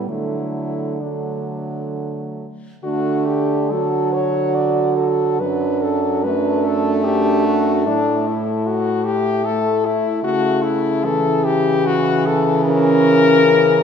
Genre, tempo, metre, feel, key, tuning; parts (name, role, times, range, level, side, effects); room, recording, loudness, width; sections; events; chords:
classical, lyrical piece for horn quartet; 63-78 BPM; 3/4; rubato; D major; A4 = 439 Hz
clear French horn; melody; 0.0-13.8 s; D4 to D5; -19 LUFS; left 6 dB
mellow French horn; second line; 0.0-13.8 s; A3 to F#4; -23 LUFS; right 9 dB
clear French horn; accompaniment; 0.0-13.8 s; E3 to A3; -23 LUFS; left 1 dB
warm French horn; bass; 0.0-13.8 s; F#2 to D3; -22 LUFS; right 2 dB
wet recital hall reverb, RT60 1.6 s; -16 LUFS; side -7 dB against mid
0.0-2.8 A section; 2.8-13.8 B section
0.1 D; 5.4 D/F#; 7.9 A5; 10.2 A/C#; 12.7 F#7/C# (rootless)